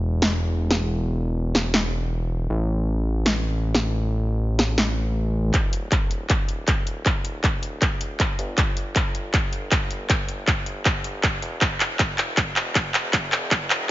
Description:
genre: future bass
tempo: 158 BPM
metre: 4/4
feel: swing 56% on 16ths, half-time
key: unclear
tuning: A4 = 440 Hz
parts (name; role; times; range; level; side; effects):
- fat analog bass; bass; 0.0-13.9 s; D1 to A1; -26 LUFS; equal; sidechain pumping, high-pass filter
- big-room dance drum kit; drums; 0.2-13.8 s; handclaps, hi-hat, snare drum; -23 LUFS; equal; high-pass filter on snare, high-pass filter on hats
- electronic kick drum; drums; 5.5-13.6 s; none; -23 LUFS; equal; none
room: light reverb, digital ambience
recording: high-pass filter, nothing above 7.5 kHz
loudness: -20 LUFS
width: side -15 dB against mid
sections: 0.0-5.5 A section; 5.5-13.9 B section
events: build-up 5.5-13.9; drum fill 5.5-13.9; filter sweep 5.5-13.9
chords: none

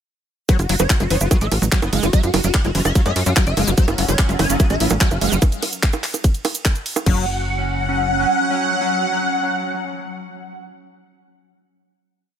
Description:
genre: psychedelic trance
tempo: 146 BPM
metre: 4/4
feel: straight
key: unclear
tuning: A4 = 440 Hz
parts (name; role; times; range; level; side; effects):
- swarming rave lead; melody; 0.5-10.6 s; F#4 to F#5; -23 LUFS; equal; chorus, phaser, sidechain pumping, ping-pong delay
- screaming distorted acid line; riff; 0.5-7.3 s; E3 to G#3; -25 LUFS; moving between left 9 dB and right 9 dB; distortion, chorus, auto-pan, sidechain pumping, ping-pong delay
- electronic kick drum; drums; 0.5-7.1 s; none; -16 LUFS; equal; none
- garage drum kit; drums; 0.5-7.1 s; bongos, crash cymbal, handclaps, hi-hat, ride cymbal; -22 LUFS; right 3 dB; none
- cabasa; percussion; 0.5-7.0 s; none; -28 LUFS; right 5 dB; none
- tight sequencer bass; bass; 0.6-8.3 s; F#1 to F#2; -21 LUFS; equal; none
- metallic wobble bass; second line; 1.1-4.9 s; B3 to E4; -33 LUFS; left 3 dB; none
- pulsing gated texture; sustained chords; 3.8-10.6 s; F#3 to C#4; -25 LUFS; right 2 dB; chorus, built-in reverb, sidechain pumping
room: little or no reverb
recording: none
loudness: -16 LUFS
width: side -9 dB against mid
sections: 0.5-7.1 drop; 7.1-10.4 final chord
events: drop 0.5-7.1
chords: 0.5 F#5

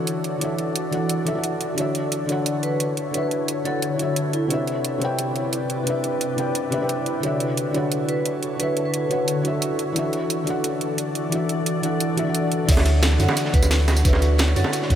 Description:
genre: liquid drum and bass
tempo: 176 BPM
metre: 4/4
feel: straight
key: D major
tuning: A4 = 440 Hz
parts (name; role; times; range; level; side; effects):
- felt-muted upright piano; accompaniment; 0.0-15.0 s; C3 to G5; -24 LUFS; left 1 dB; analog delay
- glassy FM pad; sustained chords; 0.0-15.0 s; C3 to D5; -26 LUFS; equal; ensemble chorus, built-in reverb
- drum and bass drum kit; drums; 0.1-15.0 s; crash cymbal, hi-hat, snare drum, tambourine; -26 LUFS; right 2 dB; overdrive
- vibraphone with medium hard mallets; melody; 2.6-4.5, 8.1-9.3, 13.5-14.8 s; E4 to B4; -30 LUFS; right 1 dB; analog delay
- warm sub bass; bass; 12.7-15.0 s; D2 to F#2; -18 LUFS; equal; tube saturation
- crunchy breakbeat drum kit; drums; 12.7-15.0 s; hi-hat, snare drum; -32 LUFS; equal; high-pass filter on hats, high-pass filter on snare, high-pass filter on room
- electronic kick drum; drums; 12.7-15.0 s; none; -19 LUFS; equal; none
- bongos; percussion; 12.8-14.7 s; none; -28 LUFS; right 3 dB; none
room: wet huge ambient reverb, RT60 7.4 s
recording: dreamy mix soaked in reverb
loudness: -20 LUFS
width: side -10 dB against mid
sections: 0.0-12.7 A section; 12.7-15.0 B section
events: filter sweep on ambient pad 0.0-12.7; drop 12.7-15.0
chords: 0.0 E7sus4; 1.8 Dmaj9; 4.5 Cmaj9; 7.2 Dmaj9; 10.0 E7sus4; 12.7 Dmaj9

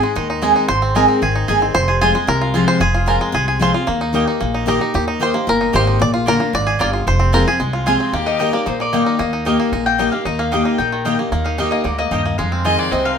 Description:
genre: bluegrass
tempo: 226 BPM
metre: 4/4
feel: straight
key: unclear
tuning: A4 = 440 Hz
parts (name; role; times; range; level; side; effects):
- bluegrass banjo; melody; 0.0-13.2 s; Eb3 to D5; -20 LUFS; right 1 dB; none
- picked steel-string acoustic guitar; accompaniment; 0.0-13.2 s; F2 to Ab4; -20 LUFS; left 3 dB; none
- upright bass; bass; 0.2-13.2 s; F1 to F2; -22 LUFS; equal; none
- mandolin; stabs; 0.4-12.7 s; Bb3 to Bb5; -20 LUFS; right 4 dB; none
- clear fiddle; second line; 8.1-8.6, 12.7-13.2 s; G4 to Eb5; -22 LUFS; left 4 dB; none
- mandolin; melody; 8.3-13.2 s; C5 to G5; -22 LUFS; left 5 dB; none
room: moderate studio reverb, RT60 0.7 s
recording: band playing live in one room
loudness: -14 LUFS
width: side -7 dB against mid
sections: 0.0-8.1 A section; 8.1-13.2 B section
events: five-string banjo solo 0.0-8.1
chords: 0.0 Ab; 1.8 Fm; 3.9 Eb; 6.0 Bb; 7.1 Fm; 8.1 Eb; 12.4 Fm7

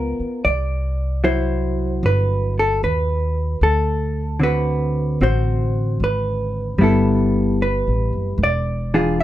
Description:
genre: jazz ballad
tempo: 76 BPM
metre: 4/4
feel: swing 68% on 8ths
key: unclear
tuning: A4 = 441 Hz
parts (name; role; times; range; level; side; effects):
- vintage hollow-body jazz guitar; accompaniment; 0.0-9.2 s; D3 to D5; -20 LUFS; equal; none
- upright bass; bass; 0.0-9.2 s; E1 to Eb2; -21 LUFS; equal; none
room: little or no reverb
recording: close, detailed microphones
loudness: -17 LUFS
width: side -13 dB against mid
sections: 0.0-9.2 A section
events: none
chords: 0.4 Cmaj9#11; 3.6 D6; 6.8 G69; 8.4 E7b9

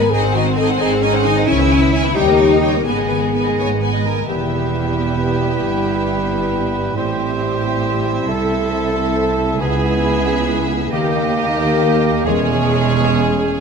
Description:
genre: classical, dramatic, fast romantic movement for symphony orchestra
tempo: 89 BPM (dotted quarters)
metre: 6/8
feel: rubato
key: G# minor, E minor from 4.3 s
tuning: A4 = 439 Hz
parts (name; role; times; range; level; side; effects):
- rich studio violin section; melody; 0.0-13.6 s; C#5 to G#5; -27 LUFS; equal; none
- warm symphonic violin section; second line; 0.0-13.6 s; G4 to D#5; -25 LUFS; left 2 dB; none
- warm symphonic viola section; accompaniment; 0.0-13.6 s; G3 to D#4; -27 LUFS; right 3 dB; none
- mellow French horn section; sustained chords; 0.0-13.6 s; A#3 to A#4; -22 LUFS; left 5 dB; none
- concert harp; arpeggios; 0.0-13.6 s; E2 to D#5; -25 LUFS; left 12 dB; none
- clear symphonic cello section; bass; 0.0-13.6 s; C2 to E4; -23 LUFS; right 4 dB; none
- warm symphonic double bass section; bass; 0.0-13.6 s; E1 to D#2; -22 LUFS; right 5 dB; none
- mellow clarinet; second line; 4.3-13.6 s; C#4 to E4; -26 LUFS; right 2 dB; none
- mellow cor anglais; second line; 4.3-13.6 s; G4 to C5; -25 LUFS; right 4 dB; none
- mellow bassoon; accompaniment; 4.3-13.6 s; G3 to B3; -24 LUFS; right 1 dB; none
room: moderate scoring stage reverb, RT60 2.1 s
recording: none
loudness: -14 LUFS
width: side -5 dB against mid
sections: 0.0-4.3 A section; 4.3-13.6 B section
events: none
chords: 0.1 G#7; 1.5 C#m7; 2.1 D#7; 2.8 G#m; 4.3 Em; 5.6 Em/G; 7.0 Am7; 8.3 Am/C; 9.6 C#m7; 10.9 D#; 12.3 C#m/E

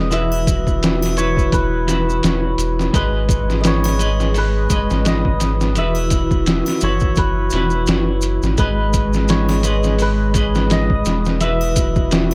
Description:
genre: trip hop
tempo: 85 BPM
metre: 4/4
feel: swing 56% on 16ths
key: G# minor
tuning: A4 = 439 Hz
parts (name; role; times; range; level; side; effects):
- hammered dulcimer; melody; 0.0-12.3 s; B4 to E5; -27 LUFS; equal; dub echo
- clean electric guitar; accompaniment; 0.0-12.3 s; E3 to D#5; -26 LUFS; equal; harmonic tremolo
- dark analog pad; sustained chords; 0.0-12.3 s; G#3 to D#5; -28 LUFS; equal; chorus, vintage 12-bit sampler grit
- soft dub sub bass; bass; 0.0-12.3 s; E1 to G#1; -22 LUFS; equal; none
- trip hop sampler-style drum kit; drums; 0.1-12.3 s; hi-hat, kick drum, snare drum; -21 LUFS; equal; overdrive, vintage 12-bit sampler grit
- maracas and triangle; percussion; 0.1-12.3 s; none; -33 LUFS; equal; none
room: little or no reverb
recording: none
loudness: -17 LUFS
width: mono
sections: 0.0-12.3 A section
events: none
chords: 0.1 Esus2; 2.9 G#m; 5.8 Esus2; 8.6 G#m; 11.4 Esus2

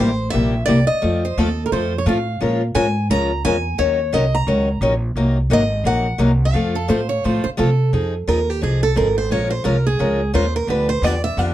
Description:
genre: acoustic string swing (jazz manouche)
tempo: 174 BPM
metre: 4/4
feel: swing 59% on 8ths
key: F minor from 7.9 s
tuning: A4 = 440 Hz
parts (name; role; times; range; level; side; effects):
- picked steel-string acoustic guitar; melody; 0.0-11.5 s; G4 to Bb5; -22 LUFS; right 1 dB; plate reverb
- picked steel-string acoustic guitar; accompaniment; 0.0-11.5 s; C3 to Bb4; -20 LUFS; left 2 dB; none
- upright bass; bass; 0.0-11.5 s; Ab1 to C3; -20 LUFS; right 1 dB; none
- picked steel-string acoustic guitar; second line; 1.2-2.7, 6.8-7.9 s; A4 to F5; -24 LUFS; right 6 dB; none
room: light reverb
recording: dark, warm production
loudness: -16 LUFS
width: side -13 dB against mid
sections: 0.0-7.9 A section; 7.9-11.5 B section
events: steel-string acoustic guitar solo 7.9-11.5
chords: 0.0 C7; 1.0 F; 2.4 Bbm7; 3.8 Ebm7; 5.2 Cm7b5; 6.5 F; 7.9 Fm7; 9.3 Bbm7; 10.7 G7

